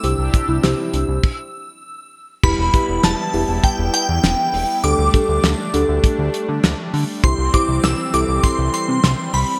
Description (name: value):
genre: synth-pop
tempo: 100 BPM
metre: 4/4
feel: straight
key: E minor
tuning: A4 = 440 Hz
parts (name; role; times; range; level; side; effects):
- shimmering bell with halo; melody; 0.0-9.6 s; G5 to E6; -24 LUFS; equal; ensemble chorus, digital delay
- muted felt-like synth keys; accompaniment; 0.0-8.9 s; D4 to C5; -25 LUFS; equal; chorus
- brassy analog pad; sustained chords; 0.0-9.6 s; C3 to G4; -29 LUFS; equal; chorus
- soft round pluck; arpeggios; 0.0-1.2 s; D4 to G4; -30 LUFS; equal; chorus, digital delay
- fat analog bass; bass; 0.0-9.4 s; E1 to D3; -23 LUFS; equal; none
- damped 70s drum kit; drums; 0.0-9.5 s; crash cymbal, hi-hat, kick drum, snare drum; -21 LUFS; equal; gated reverb
room: moderate plate reverb, RT60 1.7 s, studio reverb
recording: bright 1980s-style digital production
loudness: -18 LUFS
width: mono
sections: 0.0-2.4 A section; 2.4-9.6 B section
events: stop 1.2-2.4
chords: 0.0 Cadd9; 2.4 Em; 4.8 Dsus4; 7.2 C